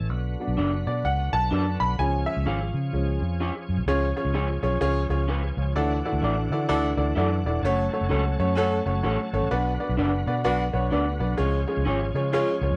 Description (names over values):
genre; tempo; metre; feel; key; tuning
soul; 128 BPM; 4/4; swing 61% on 8ths; unclear; A4 = 436 Hz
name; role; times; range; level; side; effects
bright tonewheel organ; sustained chords; 0.0-12.8 s; D3 to A4; -39 LUFS; equal; slow rotary speaker, overdrive, chorus vibrato
vintage muted fingered electric bass; bass; 0.0-12.8 s; E1 to D3; -28 LUFS; equal; none
warm upright piano; accompaniment; 0.4-12.8 s; E#3 to B5; -28 LUFS; equal; none
electric guitar through a small old amp; stabs; 0.6-12.0 s; A3 to D5; -30 LUFS; equal; none
mellow saxophone section; second line; 6.7-12.5 s; G#3 to A4; -33 LUFS; equal; none
room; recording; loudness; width
light reverb; none; -25 LUFS; mono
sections
0.0-3.9 A section; 3.9-5.8 B section; 5.8-12.8 C section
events
upright piano solo 0.0-3.9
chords
0.1 Bm; 2.0 C#; 5.8 Dadd9; 7.6 F#m; 9.5 Bm; 11.4 C#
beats
| 0.11 0.58 1.05 1.52 | 1.99 2.46 2.93 3.40 | 3.87 4.34 4.82 5.29 | 5.75 6.22 6.70 7.16 | 7.63 8.10 8.57 9.04 | 9.51 9.98 10.45 10.92 | 11.39 11.86 12.33